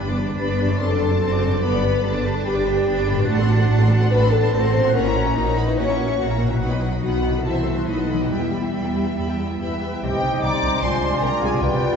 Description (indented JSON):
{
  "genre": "classical, dramatic, fast romantic movement for symphony orchestra",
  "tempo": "137-153 BPM",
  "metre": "4/4",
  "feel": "straight",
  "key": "E minor",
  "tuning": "A4 = 442 Hz",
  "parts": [
    { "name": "rich symphonic violin section", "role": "second line", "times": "0.0-12.0 s", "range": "B4 to D6", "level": "-31 LUFS", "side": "equal", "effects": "none" },
    { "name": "rich symphonic viola section", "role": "accompaniment", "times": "0.0-12.0 s", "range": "G3 to D5", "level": "-28 LUFS", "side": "right 2 dB", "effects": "none" },
    { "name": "concert harp", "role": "arpeggios", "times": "0.0-12.0 s", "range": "F#2 to D6", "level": "-27 LUFS", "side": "left 3 dB", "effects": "none" },
    { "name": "clear chamber cello section", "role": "bass", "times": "0.0-12.0 s", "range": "C3 to D#4", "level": "-28 LUFS", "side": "right 2 dB", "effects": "none" },
    { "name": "rich symphonic double bass section", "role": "bass", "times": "0.0-11.9 s", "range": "F#1 to E2", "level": "-23 LUFS", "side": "right 2 dB", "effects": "none" },
    { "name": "clear symphonic violin section", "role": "melody", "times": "0.4-12.0 s", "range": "D#5 to D6", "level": "-31 LUFS", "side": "left 4 dB", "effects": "none" },
    { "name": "mellow French horn section", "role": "sustained chords", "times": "0.4-12.0 s", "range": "G3 to C#5", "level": "-24 LUFS", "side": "left 2 dB", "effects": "none" },
    { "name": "mellow large flute ensemble", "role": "second line", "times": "9.6-12.0 s", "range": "B4 to Bb5", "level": "-28 LUFS", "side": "left 2 dB", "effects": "none" },
    { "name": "mellow bassoon", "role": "accompaniment", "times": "10.0-12.0 s", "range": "B3 to Eb4", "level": "-30 LUFS", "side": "right 2 dB", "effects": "none" },
    { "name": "warm trumpet", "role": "stabs", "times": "10.0-12.0 s", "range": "B4 to D5", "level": "-29 LUFS", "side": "right 4 dB", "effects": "none" },
    { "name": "warm clarinet", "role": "second line", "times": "10.1-12.0 s", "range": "F4 to G4", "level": "-29 LUFS", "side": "left 3 dB", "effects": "none" }
  ],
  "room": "wet scoring stage reverb, RT60 1.9 s",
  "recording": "heard from further back in the room, nothing above 7.8 kHz",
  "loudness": "-18 LUFS",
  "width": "side -6 dB against mid",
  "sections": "0.0-10.0 A section; 10.0-12.0 B section",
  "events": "none",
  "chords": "0.0 G; 0.8 D7/F#; 1.6 G; 3.3 F#dim/A; 4.9 F#7/A#; 6.6 B; 7.5 Am/C; 7.9 B7; 8.3 Em; 10.0 Cm; 10.8 Dm7b5/C"
}